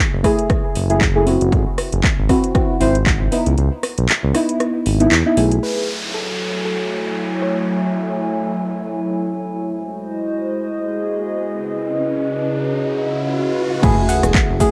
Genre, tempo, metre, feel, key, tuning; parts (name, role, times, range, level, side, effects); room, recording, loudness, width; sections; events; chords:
deep house; 117 BPM; 4/4; swing 56% on 16ths; F# dorian; A4 = 438 Hz
smooth synth bass; bass; 0.1-5.6, 13.8-14.6 s; E1 to E2; -21 LUFS; equal; tube saturation, sidechain pumping
deep mellow chord stab; stabs; 0.2-5.9, 13.8-14.7 s; A3 to B#4; -21 LUFS; equal; chorus, phaser, sidechain pumping, tape echo
electronic kick drum; drums; 0.2-3.2, 13.8-14.7 s; -21 LUFS; equal; overdrive, cassette tape
house drum kit; drums; 0.2-5.6, 13.8-14.7 s; cabasa, crash cymbal, handclaps, hi-hat, rim click; -24 LUFS; equal; overdrive, cassette tape
soft round pluck; melody; 5.6-9.4, 14.1-14.6 s; A4 to F#5; -29 LUFS; equal; analog chorus, cassette tape, analog delay
warbly tape-like pad; sustained chords; 5.6-14.7 s; C#3 to G#5; -25 LUFS; equal; chorus, built-in reverb, sidechain pumping
downlifter, riser and sub drop; sound effects; 5.6-14.7 s; -30 LUFS; equal
warbly tape-like pad; texture; 6.3-14.7 s; F#3 to D#5; -27 LUFS; equal; chorus, built-in reverb, sidechain pumping
moderate small room reverb, RT60 0.5 s; home recording on cassette, faint mains hum; -19 LUFS; mono
0.0-5.6 A section; 5.6-13.8 B section
kick drops out 3.6-5.6; band accent 5.1; riser 11.2-13.8; impact 13.8-14.7
0.0 F#m9; 1.5 G#7b13; 3.3 C#m9; 5.6 F#m9; 9.7 G#7b13; 11.5 C#m9; 13.8 F#m9